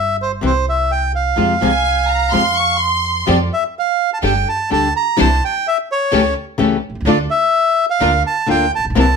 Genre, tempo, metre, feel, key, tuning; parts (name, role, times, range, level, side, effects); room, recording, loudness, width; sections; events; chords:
tango; 126 BPM; 4/4; rubato; F minor, F major from 3.3 s; A4 = 440 Hz
bandoneon; melody; 0.0-9.2 s; C5 to Bb5; -16 LUFS; right 2 dB; slapback echo
upright bass; bass; 0.0-9.2 s; G1 to F2; -21 LUFS; right 1 dB
flamenco guitar; accompaniment; 0.4-9.1 s; C3 to G4; -17 LUFS; left 5 dB
warm studio violin section; second line; 1.6-3.3 s; Ab5 to Db6; -17 LUFS; equal
rich symphonic string section; stabs; 3.3-9.2 s; C4 to C5; -22 LUFS; equal
light reverb; close, detailed microphones; -14 LUFS; side -5 dB against mid
0.0-3.3 A section; 3.3-9.2 B section
0.0 C; 1.4 Fm; 3.3 Fadd9; 4.2 Gsus2; 5.2 Cadd9; 6.1 A7/C#; 7.1 Dm; 8.0 Bb/D